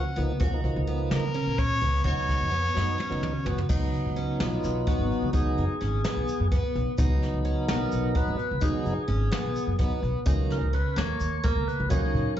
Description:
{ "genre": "progressive instrumental, band music in an uneven meter", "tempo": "256 BPM (eighths)", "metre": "7/8", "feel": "straight", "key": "Db mixolydian", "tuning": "A4 = 437 Hz", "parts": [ { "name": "clear violin", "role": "melody", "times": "0.0-3.4 s", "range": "Bb4 to Gb5", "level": "-29 LUFS", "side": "equal", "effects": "plate reverb" }, { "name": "tonewheel organ", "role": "accompaniment", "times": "0.0-12.4 s", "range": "F3 to Db5", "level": "-31 LUFS", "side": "right 1 dB", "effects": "overdrive, slow rotary speaker, plate reverb, slapback echo" }, { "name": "picked twelve-string acoustic guitar", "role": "arpeggios", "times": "0.0-12.4 s", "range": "Bb3 to Gb4", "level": "-33 LUFS", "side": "left 2 dB", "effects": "plate reverb, slapback echo" }, { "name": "upright bass", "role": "bass", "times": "0.2-12.2 s", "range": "Ab1 to Db3", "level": "-28 LUFS", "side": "equal", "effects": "none" }, { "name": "jazz brush drum kit", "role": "drums", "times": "0.2-12.3 s", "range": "crash cymbal, hi-hat, kick drum, snare drum, toms", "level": "-29 LUFS", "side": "equal", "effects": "none" }, { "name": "tube shaker", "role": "percussion", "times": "3.7-12.1 s", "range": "none", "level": "-48 LUFS", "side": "left 3 dB", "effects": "none" } ], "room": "light reverb", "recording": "live gig heard through the venue's PA, club reverb, nothing above 7.7 kHz", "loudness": "-24 LUFS", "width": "side -11 dB against mid", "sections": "0.0-3.7 A section; 3.7-12.4 B section", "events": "drum fill 2.8-3.7; tonewheel organ solo 3.7-12.4", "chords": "0.0 Gb/Db; 2.1 Db7sus4; 10.3 Gb/Db" }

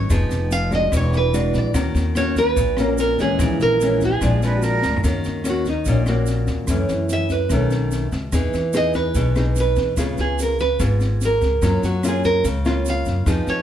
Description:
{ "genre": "bossa nova", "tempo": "146 BPM", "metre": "4/4", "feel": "straight", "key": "unclear", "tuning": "A4 = 439 Hz", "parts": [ { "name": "nylon-string guitar", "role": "melody", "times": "0.0-13.6 s", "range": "Eb4 to F5", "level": "-22 LUFS", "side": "right 2 dB", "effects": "none" }, { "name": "nylon-string guitar", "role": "accompaniment", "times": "0.0-13.6 s", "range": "Gb2 to Ab4", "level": "-23 LUFS", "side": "left 1 dB", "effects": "none" }, { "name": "upright bass", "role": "bass", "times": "0.0-13.6 s", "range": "E1 to Gb2", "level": "-22 LUFS", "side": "equal", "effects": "none" }, { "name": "open jazz drum kit", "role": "drums", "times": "0.1-13.5 s", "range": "kick drum, rim click, snare drum, toms", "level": "-26 LUFS", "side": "left 1 dB", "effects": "none" }, { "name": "tube shaker", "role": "percussion", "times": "0.1-13.6 s", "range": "none", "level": "-38 LUFS", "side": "right 6 dB", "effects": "none" }, { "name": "breathy jazz flute", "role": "second line", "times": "4.4-5.0 s", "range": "A#4 to B4", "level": "-24 LUFS", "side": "right 4 dB", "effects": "none" } ], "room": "light reverb", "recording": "none", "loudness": "-17 LUFS", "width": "side -10 dB against mid", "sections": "0.0-5.0 A section; 5.0-13.6 B section", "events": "drum fill 4.8; nylon-string guitar solo 5.0-13.6", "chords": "0.1 Fm7b5; 0.9 E9; 1.7 D#m7; 3.4 A#m7b5; 4.2 A#7; 5.0 Ebm7; 6.7 Gbm7; 7.5 B9; 8.3 Emaj7; 10.0 Db7; 11.6 Gbmaj7" }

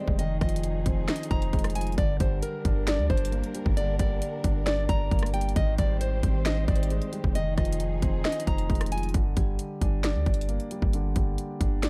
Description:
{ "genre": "hip hop, trap", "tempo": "134 BPM", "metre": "4/4", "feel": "half-time", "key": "G phrygian", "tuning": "A4 = 441 Hz", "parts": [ { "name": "nylon-string guitar", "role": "melody", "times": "0.0-9.1 s", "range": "Bb4 to Bb5", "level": "-36 LUFS", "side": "equal", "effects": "digital delay" }, { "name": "dark baby grand piano", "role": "accompaniment", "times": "0.0-11.9 s", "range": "D3 to D5", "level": "-35 LUFS", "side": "equal", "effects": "none" }, { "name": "dark symphonic string section", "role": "sustained chords", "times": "0.0-9.1 s", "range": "F3 to C5", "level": "-44 LUFS", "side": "equal", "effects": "none" }, { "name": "long sustained 808-style bass", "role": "bass", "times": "0.1-11.9 s", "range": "F1 to D2", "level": "-30 LUFS", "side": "equal", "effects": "none" }, { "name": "trap drum kit", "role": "drums", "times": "0.1-11.9 s", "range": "finger snaps, hi-hat, kick drum, rim click, snare drum", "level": "-30 LUFS", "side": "equal", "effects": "overdrive" } ], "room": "small room ambience", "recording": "dark, warm production", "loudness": "-27 LUFS", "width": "mono", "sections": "0.0-9.1 A section; 9.1-11.9 B section", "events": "none", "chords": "0.2 Fm7; 2.0 Gm; 5.6 Abmaj7; 7.4 Fm7; 9.1 Gm" }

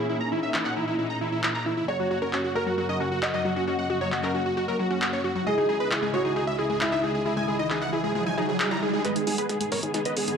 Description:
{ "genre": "uplifting trance", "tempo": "134 BPM", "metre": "4/4", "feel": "straight", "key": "unclear", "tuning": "A4 = 440 Hz", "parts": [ { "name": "dense compressed supersaw", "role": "melody", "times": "0.0-10.4 s", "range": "E4 to A#5", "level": "-28 LUFS", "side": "right 1 dB", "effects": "low-pass filter, digital delay" }, { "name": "felt-muted upright piano", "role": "second line", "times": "0.0-9.0 s", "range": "E4 to D#5", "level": "-31 LUFS", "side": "right 1 dB", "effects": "tape echo" }, { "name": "dark symphonic string section", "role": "sustained chords", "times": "0.0-10.4 s", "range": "C#2 to D#5", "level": "-31 LUFS", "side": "left 1 dB", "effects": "none" }, { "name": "punchy analog drum machine", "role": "drums", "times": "0.5-10.4 s", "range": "handclaps, hi-hat, snare drum", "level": "-30 LUFS", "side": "equal", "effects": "high-pass filter on cymbals, high-pass filter on snare, high-pass filter on hats" }, { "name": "wide unison pluck", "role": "arpeggios", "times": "1.9-10.3 s", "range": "F#3 to G#4", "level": "-32 LUFS", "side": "left 3 dB", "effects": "digital delay" }, { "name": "riser", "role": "sound effects", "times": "6.9-10.4 s", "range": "none", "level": "-32 LUFS", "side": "right 4 dB", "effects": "none" }, { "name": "tight sequencer bass", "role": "bass", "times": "9.3-10.3 s", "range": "G#1", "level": "-41 LUFS", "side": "equal", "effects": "none" } ], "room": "moderate lush hall reverb, RT60 2.0 s", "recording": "dark, warm production", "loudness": "-24 LUFS", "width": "side -6 dB against mid", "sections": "0.0-9.0 A section; 9.0-10.4 B section", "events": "riser 6.9-9.0, 9.0-10.4; build-up 9.0-10.4; drum fill 9.0-10.4; filter sweep on synth pluck 9.0-10.4", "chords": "0.0 A#dim; 1.9 F#; 5.5 C#madd9; 9.0 G#m" }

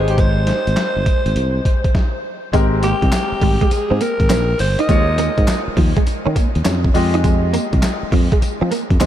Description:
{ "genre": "R&B, new jack swing", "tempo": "102 BPM", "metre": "4/4", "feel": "swing 66% on 16ths", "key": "unclear", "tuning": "A4 = 440 Hz", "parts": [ { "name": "growling alto saxophone", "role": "melody", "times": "0.0-5.7 s", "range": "G4 to Eb5", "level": "-23 LUFS", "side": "equal", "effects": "diffuse ambient delay" }, { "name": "clear concert grand piano", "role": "accompaniment", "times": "0.0-9.1 s", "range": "Ab3 to Eb5", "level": "-24 LUFS", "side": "left 2 dB", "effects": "wide subtle chorus" }, { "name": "sustaining fretless electric bass", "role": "bass", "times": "0.0-9.1 s", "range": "G1 to F3", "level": "-18 LUFS", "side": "equal", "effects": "none" }, { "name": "dusty soul sampler-style drum kit", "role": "drums", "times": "0.1-9.1 s", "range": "handclaps, hi-hat, kick drum, snare drum, tambourine", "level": "-18 LUFS", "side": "equal", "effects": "overdrive" }, { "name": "direct-recorded clean electric guitar", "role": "riff", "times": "2.5-9.1 s", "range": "F3 to Eb4", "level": "-23 LUFS", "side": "right 3 dB", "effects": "ensemble chorus" }, { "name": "group handclap", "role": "percussion", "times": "3.1-9.1 s", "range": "none", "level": "-39 LUFS", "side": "left 5 dB", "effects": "none" } ], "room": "light reverb, digital ambience", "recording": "none", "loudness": "-14 LUFS", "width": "side -11 dB against mid", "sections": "0.0-2.5 A section; 2.5-9.1 B section", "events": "stop 1.9-2.5", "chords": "0.0 Abmaj7; 2.5 Abmaj9; 4.9 Eb9sus4; 6.9 Fm9" }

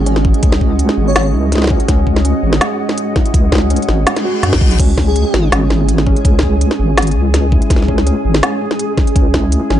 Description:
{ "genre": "half-time drum and bass", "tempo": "165 BPM", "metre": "4/4", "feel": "swing 53% on 16ths, half-time", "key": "unclear", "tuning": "A4 = 440 Hz", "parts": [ { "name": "deep dark ambient pad", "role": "sustained chords", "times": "0.0-9.8 s", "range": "G#3 to D#5", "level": "-21 LUFS", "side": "right 2 dB", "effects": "chorus, built-in reverb, sidechain pumping" }, { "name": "felt-muted upright piano", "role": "arpeggios", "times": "0.0-9.8 s", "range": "C#4 to F#4", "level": "-22 LUFS", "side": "equal", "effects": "tape echo" }, { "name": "deep soft wobble bass", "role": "bass", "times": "0.0-9.8 s", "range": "G#1 to F#2", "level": "-14 LUFS", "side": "equal", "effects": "chorus" }, { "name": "flickering grainy texture", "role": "texture", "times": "0.0-9.8 s", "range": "G#3 to G#4", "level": "-24 LUFS", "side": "right 1 dB", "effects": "built-in reverb" }, { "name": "organic electronic drum kit", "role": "drums", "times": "0.1-9.8 s", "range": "crash cymbal, hi-hat, snare drum", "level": "-17 LUFS", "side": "equal", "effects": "none" }, { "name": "electronic kick drum", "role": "drums", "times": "0.2-9.4 s", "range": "none", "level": "-14 LUFS", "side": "equal", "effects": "overdrive" }, { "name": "airy dreamy lead", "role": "melody", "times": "1.1-1.2, 5.1-5.4 s", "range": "G#4 to C#5", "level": "-25 LUFS", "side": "left 1 dB", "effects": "chorus, cassette tape, tape echo" }, { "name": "reverse cymbal", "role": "sound effects", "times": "4.2-4.8 s", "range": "none", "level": "-24 LUFS", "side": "left 5 dB", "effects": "none" } ], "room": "little or no reverb", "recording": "dry, gritty hardware recording, nothing above 10.7 kHz", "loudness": "-11 LUFS", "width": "side -11 dB against mid", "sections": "0.0-9.8 A section", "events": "reverse cymbal 4.2-4.8", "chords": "0.0 C#5" }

